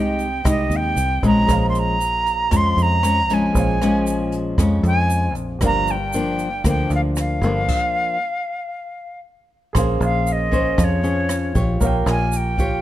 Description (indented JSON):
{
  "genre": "bossa nova",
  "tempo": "116 BPM",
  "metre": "4/4",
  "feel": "straight",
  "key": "unclear",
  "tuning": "A4 = 440 Hz",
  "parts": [
    { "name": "concert flute", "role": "melody", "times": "0.0-12.8 s", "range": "Db5 to C6", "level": "-22 LUFS", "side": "right 1 dB", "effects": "plate reverb" },
    { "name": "clear grand piano", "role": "accompaniment", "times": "0.0-12.8 s", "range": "G4 to C6", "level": "-31 LUFS", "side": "right 6 dB", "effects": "none" },
    { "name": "nylon-string guitar", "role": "accompaniment", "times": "0.0-12.8 s", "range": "F2 to Db5", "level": "-22 LUFS", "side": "left 2 dB", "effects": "none" },
    { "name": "fingered electric bass", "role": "bass", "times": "0.0-12.8 s", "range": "G1 to F2", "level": "-21 LUFS", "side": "equal", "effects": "none" },
    { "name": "jazz brush drum kit", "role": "drums", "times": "0.2-12.7 s", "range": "crash cymbal, hi-hat, kick drum, rim click", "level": "-25 LUFS", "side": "equal", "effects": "none" },
    { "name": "egg shaker", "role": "percussion", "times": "0.2-12.8 s", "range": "none", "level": "-35 LUFS", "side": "right 6 dB", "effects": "none" }
  ],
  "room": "light reverb",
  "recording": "none",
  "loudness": "-17 LUFS",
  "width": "side -13 dB against mid",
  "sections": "0.0-9.8 A section; 9.8-12.8 B section",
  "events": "stop 7.7-9.8; flute solo 9.8-12.8",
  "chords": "0.0 Fm9/C; 1.5 Bbm7; 5.6 Gm7; 9.2 N.C.; 9.8 Bbm9; 11.8 Eb9/Bb (rootless)",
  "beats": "0.45 0.97 | 1.48 2.00 2.52 3.04 | 3.55 4.07 4.59 5.10 | 5.62 6.14 6.65 7.17 | 7.68 8.20 8.72 9.23 | 9.75 10.27 10.78 11.30 | 11.81 12.33"
}